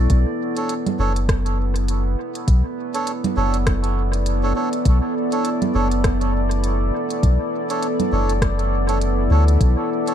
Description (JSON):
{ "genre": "ambient dub", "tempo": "101 BPM", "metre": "4/4", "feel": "swing 57% on 16ths", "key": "B minor", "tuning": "A4 = 440 Hz", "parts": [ { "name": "deep dark ambient pad", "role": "sustained chords", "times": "0.0-10.1 s", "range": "B3 to D5", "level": "-23 LUFS", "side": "equal", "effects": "chorus, built-in reverb" }, { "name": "soft dub sub bass", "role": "bass", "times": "0.0-9.8 s", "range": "F#1 to D2", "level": "-18 LUFS", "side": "equal", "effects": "none" }, { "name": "electronic kick drum", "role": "drums", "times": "0.1-9.7 s", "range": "none", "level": "-20 LUFS", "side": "equal", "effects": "small room reverb" }, { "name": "organic electronic drum kit", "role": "drums", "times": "0.1-10.1 s", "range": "congas, hi-hat, rim click", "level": "-28 LUFS", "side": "right 4 dB", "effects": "small room reverb, dub echo" }, { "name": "melodica", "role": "stabs", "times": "0.6-10.1 s", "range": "D4 to C#5", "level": "-28 LUFS", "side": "right 2 dB", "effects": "dub echo" } ], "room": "light reverb", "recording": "dark, warm production", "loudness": "-18 LUFS", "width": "side -10 dB against mid", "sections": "0.1-10.1 A section", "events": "none", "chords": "0.1 Bm9" }